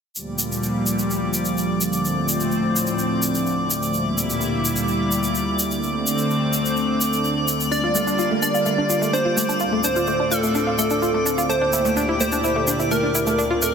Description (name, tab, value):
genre	progressive house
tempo	127 BPM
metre	4/4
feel	straight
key	unclear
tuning	A4 = 440 Hz
part	lush unison pad	sustained chords	0.2-13.7 s	D2 to Bb4	-22 LUFS	equal	chorus
part	egg shaker	percussion	0.2-13.7 s	none	-26 LUFS	left 1 dB	none
part	drifting glass-harmonics texture	texture	0.3-13.7 s	D5 to D6	-27 LUFS	left 1 dB	chorus, built-in reverb
part	plucky unison lead	melody	7.7-13.7 s	A4 to D5	-22 LUFS	right 1 dB	dub echo
part	analog pluck	arpeggios	7.7-13.7 s	A3 to F4	-24 LUFS	equal	chorus, phaser, dub echo
room	wet lush hall reverb, RT60 2.5 s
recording	dense, heavily limited modern master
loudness	-19 LUFS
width	side -6 dB against mid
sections	0.2-13.7 A section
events	none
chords	0.2 Gm7/D; 2.0 Dm7; 3.9 Gm6/D; 5.8 Amadd11/D; 7.7 Gm7/D; 9.6 Dm7; 11.5 C7/D